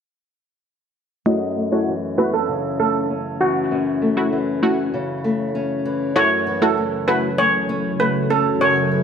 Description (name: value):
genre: dancehall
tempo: 98 BPM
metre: 4/4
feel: straight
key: unclear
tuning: A4 = 440 Hz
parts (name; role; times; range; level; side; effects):
- steel pan; melody; 1.3-8.9 s; F#4 to D#5; -20 LUFS; right 2 dB; low-pass filter, tape echo
- punchy chord stab; accompaniment; 1.3-7.3 s; A3 to F#4; -22 LUFS; equal; chorus, low-pass filter
- nylon-string guitar; arpeggios; 1.3-9.0 s; F#2 to C#4; -22 LUFS; left 2 dB; low-pass filter, tape echo
- deep dark ambient pad; sustained chords; 6.9-9.0 s; C#3 to A4; -24 LUFS; right 1 dB; chorus, built-in reverb
room: moderate lush hall reverb, RT60 2.3 s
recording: none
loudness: -17 LUFS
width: side -7 dB against mid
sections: 1.3-6.2 A section; 6.2-9.0 B section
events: filter sweep 1.3-6.2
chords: 1.3 F#m7